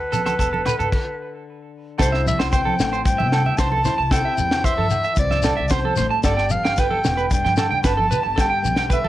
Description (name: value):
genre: highlife guitar band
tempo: 113 BPM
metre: 4/4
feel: straight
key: C major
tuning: A4 = 441 Hz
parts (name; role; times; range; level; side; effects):
- breathy clarinet; melody; 0.0-9.1 s; B4 to A5; -23 LUFS; equal; none
- upright bass; bass; 0.0-9.1 s; E1 to C3; -26 LUFS; equal; none
- flamenco guitar; accompaniment; 0.1-9.1 s; G2 to A4; -31 LUFS; left 7 dB; none
- electric guitar at the edge of break-up; arpeggios; 0.1-9.1 s; A4 to A5; -24 LUFS; right 7 dB; tape echo
- tight funk drum kit; drums; 0.1-9.0 s; crash cymbal, hi-hat, kick drum, rim click, snare drum; -22 LUFS; equal; cassette tape
- congas; percussion; 0.1-9.1 s; none; -30 LUFS; right 4 dB; none
- shekere; percussion; 0.1-9.0 s; none; -27 LUFS; left 4 dB; none
- agogo bells; percussion; 0.3-8.9 s; none; -34 LUFS; left 9 dB; none
room: light reverb, studio reverb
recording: home recording on cassette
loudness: -17 LUFS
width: side -14 dB against mid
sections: 0.0-2.0 A section; 2.0-9.1 B section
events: stop 0.9-2.0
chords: 0.0 Gadd9 (rootless); 2.0 C6; 6.2 Gadd9